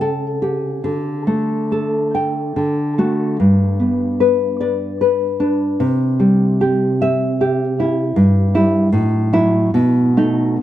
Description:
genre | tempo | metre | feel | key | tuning
romantic piece for solo classical guitar | 68-82 BPM | 3/4 | rubato | unclear | A4 = 439 Hz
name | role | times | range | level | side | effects
nylon-string guitar | solo | 0.0-10.6 s | G2 to G5 | -14 LUFS | equal | tape echo
room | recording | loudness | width
light reverb | dry, close 1970s-style studio recording | -14 LUFS | side -12 dB against mid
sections
0.0-10.6 A section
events
none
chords
0.0 A7/C#; 0.9 Dsus4; 2.6 D; 3.4 G; 5.8 C; 8.2 Em/G; 8.9 F#m7/A; 9.7 B7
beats
0.03 | 0.85 1.72 2.57 | 3.40 4.21 5.02 | 5.83 6.62 7.41 | 8.16 8.92 9.73

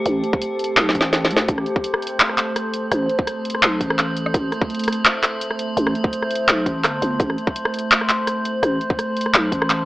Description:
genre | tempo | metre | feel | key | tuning
half-time drum and bass | 168 BPM | 4/4 | swing 53% on 16ths, half-time | A minor | A4 = 440 Hz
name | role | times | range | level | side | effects
deep dark ambient pad | sustained chords | 0.0-9.9 s | A3 to A5 | -27 LUFS | right 1 dB | chorus, built-in reverb, sidechain pumping
metallic inharmonic drone | texture | 0.0-9.9 s | G4 to C5 | -26 LUFS | equal | chorus, built-in reverb, phaser
growling 808-style bass | bass | 0.1-9.9 s | G1 to D2 | -22 LUFS | equal | none
drum and bass drum kit | drums | 0.1-9.8 s | handclaps, hi-hat, rim click, snare drum | -18 LUFS | equal | overdrive
electronic kick drum | drums | 0.3-9.6 s | none | -22 LUFS | equal | none
room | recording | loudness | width
moderate spring reverb, RT60 1.3 s, digital ambience | AM radio sound | -17 LUFS | side -18 dB against mid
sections
0.0-9.9 A section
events
drum fill 0.8-1.5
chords
0.0 Am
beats
| 0.06 0.41 0.77 1.13 | 1.49 1.84 2.20 2.56 | 2.92 3.27 3.63 3.99 | 4.34 4.70 5.06 5.42 | 5.77 6.13 6.49 6.84 | 7.20 7.56 7.92 8.27 | 8.63 8.99 9.34 9.70

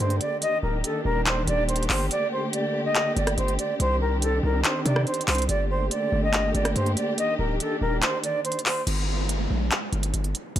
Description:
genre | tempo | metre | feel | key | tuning
hip hop, trap | 142 BPM | 4/4 | half-time | G minor | A4 = 440 Hz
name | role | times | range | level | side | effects
silver concert flute | melody | 0.0-8.8 s | A4 to Eb5 | -26 LUFS | equal | ping-pong delay
dark symphonic string section | sustained chords | 0.0-8.9 s | D3 to G4 | -30 LUFS | equal | none
hard-hitting 808-style bass | bass | 0.0-10.6 s | D1 to C3 | -25 LUFS | equal | none
trap drum kit | drums | 0.0-10.6 s | crash cymbal, handclaps, hi-hat, rim click | -27 LUFS | equal | none
downlifter | sound effects | 8.9-10.6 s | none | -32 LUFS | right 1 dB | none
room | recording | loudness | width
light reverb | none | -22 LUFS | side -11 dB against mid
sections
0.0-8.9 A section; 8.9-10.6 B section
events
break 2.1-3.0; kick muted 8.0-8.9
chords
0.4 Ebmaj7; 2.1 Gmadd9; 3.8 Cmadd9; 5.5 Gmadd9; 7.2 Ebmaj7; 8.9 Gm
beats
0.00 | 0.42 0.84 1.26 1.69 | 2.11 2.53 2.95 3.38 | 3.80 4.22 4.64 5.07 | 5.49 5.91 6.33 6.76 | 7.18 7.60 8.02 8.45 | 8.87 9.29 9.71 10.14 | 10.56

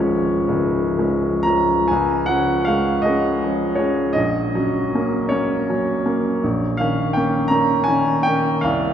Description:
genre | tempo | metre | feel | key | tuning
classical, romantic nocturne for solo piano | 53 BPM (dotted quarters) | 6/8 | uneven beats, rubato | Db major | A4 = 441 Hz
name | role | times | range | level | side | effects
warm baby grand piano | solo | 0.0-8.9 s | Db1 to Bb5 | -17 LUFS | equal | none
room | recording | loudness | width
wet cathedral reverb, RT60 6.1 s | recorded in a church or concert hall | -17 LUFS | side -9 dB against mid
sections
0.0-1.9 A section; 1.9-8.9 B section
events
none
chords
0.0 Db; 4.2 Gb/Bb; 6.4 Eb5/Bb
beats
0.48 | 1.90 3.07 | 4.17 5.32 | 6.43 7.51 | 8.64

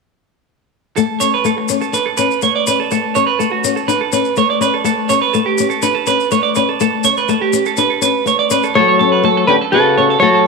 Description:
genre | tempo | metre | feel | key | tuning
highlife guitar band | 123 BPM | 4/4 | straight | D major | A4 = 437 Hz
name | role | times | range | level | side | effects
flamenco guitar | accompaniment | 1.0-10.4 s | A3 to D4 | -18 LUFS | left 12 dB | none
clean electric guitar | arpeggios | 1.0-10.5 s | F#4 to D5 | -15 LUFS | right 10 dB | spring reverb, slapback echo
maracas | percussion | 1.0-8.7 s | none | -24 LUFS | left 13 dB | none
clean electric guitar | melody | 8.8-10.5 s | F#4 to C#5 | -12 LUFS | equal | wide subtle chorus
trombone with bucket mute | second line | 8.8-10.5 s | C#3 to F#3 | -17 LUFS | left 12 dB | none
room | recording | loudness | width
wet echo chamber reverb, RT60 2.1 s | 1960s-style stereo with parts hard left and right | -12 LUFS | side -3 dB against mid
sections
1.0-8.8 A section; 8.8-10.5 B section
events
none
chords
1.0 Dmaj7(no3); 4.9 A7; 8.8 Dmaj7 (rootless)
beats
| 0.97 1.46 1.95 2.43 | 2.92 3.40 3.89 4.38 | 4.86 5.35 5.84 6.32 | 6.81 7.30 7.78 8.27 | 8.76 9.24 9.73 10.21

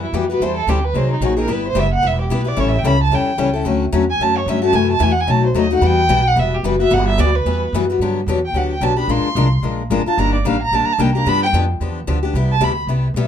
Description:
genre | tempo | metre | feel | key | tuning
acoustic string swing (jazz manouche) | 221 BPM | 4/4 | swing 57% on 8ths | E minor | A4 = 439 Hz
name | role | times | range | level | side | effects
warm violin | melody | 0.0-12.8 s | D#4 to C6 | -20 LUFS | right 2 dB | none
picked steel-string acoustic guitar | accompaniment | 0.0-13.3 s | B2 to Bb4 | -19 LUFS | left 5 dB | none
upright bass | bass | 0.0-13.3 s | E1 to G2 | -19 LUFS | right 1 dB | none
room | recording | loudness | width
moderate small room reverb, RT60 0.5 s | dark, warm production | -14 LUFS | side -9 dB against mid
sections
0.0-8.0 A section; 8.0-13.3 A section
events
violin solo 0.0-13.3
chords
0.4 Am7; 0.9 G#9; 1.5 G6; 2.6 A7; 3.7 Dmaj7; 4.7 F#m7b5; 5.3 B7; 5.8 Emadd9; 8.0 Gmaj7; 9.1 Bb7; 10.2 Ebmaj7; 11.3 G7; 12.3 Cmaj7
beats
0.14 | 0.41 0.68 0.95 1.22 | 1.49 1.76 2.04 2.31 | 2.58 2.85 3.12 3.39 | 3.66 3.93 4.21 4.48 | 4.75 5.02 5.29 5.56 | 5.83 6.10 6.38 6.65 | 6.92 7.19 7.46 7.73 | 8.00 8.28 8.55 8.82 | 9.09 9.36 9.63 9.90 | 10.18 10.45 10.72 10.99 | 11.26 11.53 11.80 12.07 | 12.34 12.62 12.89 13.16

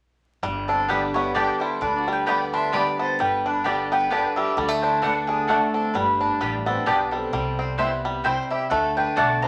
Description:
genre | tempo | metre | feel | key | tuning
bluegrass | 131 BPM | 3/4 | swing 56% on 8ths | G major | A4 = 439 Hz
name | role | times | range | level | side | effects
picked steel-string acoustic guitar | accompaniment | 0.4-9.5 s | G2 to G4 | -32 LUFS | equal | none
bluegrass banjo | arpeggios | 0.4-9.5 s | G3 to G4 | -26 LUFS | equal | none
upright bass | bass | 0.4-9.5 s | G1 to D2 | -38 LUFS | equal | none
mandolin | melody | 0.7-9.5 s | G4 to C6 | -28 LUFS | equal | none
clear fiddle | second line | 0.7-9.5 s | B3 to E5 | -34 LUFS | equal | none
mandolin | stabs | 0.9-9.3 s | A3 to G5 | -29 LUFS | equal | none
room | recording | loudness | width
wet studio reverb, RT60 0.5 s | vinyl crackle, faint mains hum | -23 LUFS | mono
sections
0.4-9.5 A section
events
none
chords
0.4 G; 4.6 D; 5.9 G; 7.3 C; 8.7 D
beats
| 0.44 0.90 1.35 | 1.81 2.27 2.73 | 3.19 3.65 4.11 | 4.57 5.03 5.49 | 5.95 6.41 6.87 | 7.33 7.79 8.25 | 8.71 9.17

